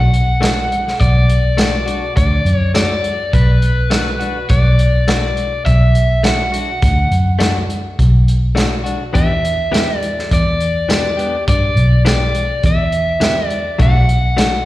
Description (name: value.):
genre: straight-eighth soul blues.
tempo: 103 BPM.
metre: 4/4.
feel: straight.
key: B minor.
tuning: A4 = 439 Hz.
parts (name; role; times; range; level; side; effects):
overdriven electric guitar; melody; 0.0-14.7 s; B4 to F#5; -19 LUFS; left 1 dB; slapback echo, tape echo.
vintage muted fingered electric bass; bass; 0.0-14.7 s; B1 to G2; -14 LUFS; equal; none.
crunchy breakbeat drum kit; drums; 0.1-14.5 s; hi-hat, kick drum, snare drum, tambourine; -18 LUFS; equal; none.
direct-recorded clean electric guitar; stabs; 0.4-14.6 s; E3 to G4; -23 LUFS; left 4 dB; slapback echo.
room: studio ambience.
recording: live gig heard through the venue's PA, recital hall reverb.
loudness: -12 LUFS.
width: side -16 dB against mid.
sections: 0.0-14.7 A section.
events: none.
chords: 0.0 Bm7; 9.1 Em7; 13.8 Bm7.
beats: 0.42 1.00 1.58 | 2.17 2.75 3.33 3.91 | 4.50 5.08 5.66 6.24 | 6.82 7.40 7.98 8.56 | 9.14 9.72 10.30 10.88 | 11.47 12.05 12.63 13.21 | 13.79 14.37.